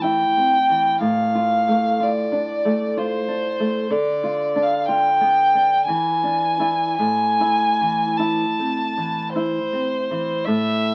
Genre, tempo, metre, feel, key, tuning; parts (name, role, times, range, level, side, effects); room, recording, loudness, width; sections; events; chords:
romantic duo for violin and classical guitar; 49-64 BPM; 3/4; rubato; A minor; A4 = 440 Hz
rich violin; melody; 0.0-10.9 s; C5 to A5; -21 LUFS; equal
nylon-string guitar; accompaniment; 0.0-10.9 s; A2 to F4; -26 LUFS; equal
moderate studio reverb, RT60 0.8 s; very old 78 rpm record, vinyl crackle; -20 LUFS; mono
0.0-10.5 A section
0.0 Am; 1.0 Dm/A; 3.9 Bdim/D; 5.9 E7; 7.0 Am